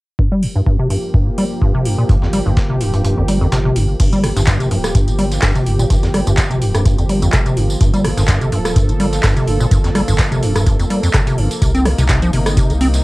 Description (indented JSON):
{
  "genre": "acid house",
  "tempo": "126 BPM",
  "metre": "4/4",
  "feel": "swing 54% on 16ths",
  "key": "G minor",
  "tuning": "A4 = 440 Hz",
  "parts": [
    { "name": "warm analog pad", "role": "sustained chords", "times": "0.5-13.0 s", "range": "C3 to A4", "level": "-23 LUFS", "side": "right 1 dB", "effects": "chorus, sidechain pumping" },
    { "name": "acid bass, square", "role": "riff", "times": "0.2-12.9 s", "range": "F2 to C4", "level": "-16 LUFS", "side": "equal", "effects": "analog delay" },
    { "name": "electronic kick drum", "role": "drums", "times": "0.2-12.7 s", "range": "none", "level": "-15 LUFS", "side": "equal", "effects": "overdrive, cassette tape" },
    { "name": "booming analog drum machine", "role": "drums", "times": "0.4-13.0 s", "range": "crash cymbal, handclaps, hi-hat, rim click, tambourine", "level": "-23 LUFS", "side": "equal", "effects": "overdrive, cassette tape" },
    { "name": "saturated sub bass", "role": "bass", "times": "2.1-13.0 s", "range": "D1 to C2", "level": "-20 LUFS", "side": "equal", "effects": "sidechain pumping" },
    { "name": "breakbeat sampler-style drum kit", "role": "drums", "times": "2.1-13.0 s", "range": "hi-hat, snare drum", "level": "-30 LUFS", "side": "right 1 dB", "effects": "sidechain pumping on hats, high-pass filter on hats, cassette tape, high-pass filter on snare" }
  ],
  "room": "light reverb",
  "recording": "home recording on cassette",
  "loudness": "-13 LUFS",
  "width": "side -20 dB against mid",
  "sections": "0.2-4.0 A section; 4.0-13.0 B section",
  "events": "filter sweep on acid bass 0.2-4.0, 4.0-13.0; kick drops out 3.0-4.0",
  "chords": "0.2 Gm7; 11.6 Cm7"
}